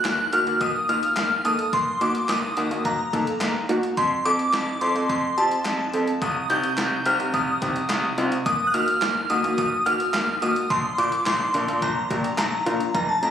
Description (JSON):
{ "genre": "synth-pop", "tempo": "107 BPM", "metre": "4/4", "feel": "straight", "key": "Bb major", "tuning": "A4 = 438 Hz", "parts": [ { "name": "shimmering bell with halo", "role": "melody", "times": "0.0-13.3 s", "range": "A5 to G6", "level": "-23 LUFS", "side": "equal", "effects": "ensemble chorus, tape echo" }, { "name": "bright concert grand piano", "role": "bass", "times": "0.0-13.3 s", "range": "F1 to F2", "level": "-28 LUFS", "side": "left 1 dB", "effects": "none" }, { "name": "gated 80s digital drum machine", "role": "drums", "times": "0.0-13.3 s", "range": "handclaps, hi-hat, kick drum, snare drum", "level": "-31 LUFS", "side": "equal", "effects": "gated reverb, gated reverb snare" }, { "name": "warm analog keys", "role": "accompaniment", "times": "0.3-13.3 s", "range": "A3 to A4", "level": "-28 LUFS", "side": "equal", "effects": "chorus" }, { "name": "analog pluck", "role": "arpeggios", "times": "12.9-13.3 s", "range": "F3 to C4", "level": "-33 LUFS", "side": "right 2 dB", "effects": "chorus" } ], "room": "moderate concert hall reverb, RT60 2.0 s", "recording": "recorded on a phone in the room, club reverb, compression", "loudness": "-20 LUFS", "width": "side -9 dB against mid", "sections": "0.0-12.9 A section", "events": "none", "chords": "0.0 Ebm; 4.0 F; 6.2 Cm; 8.5 Ebm; 10.7 Bb" }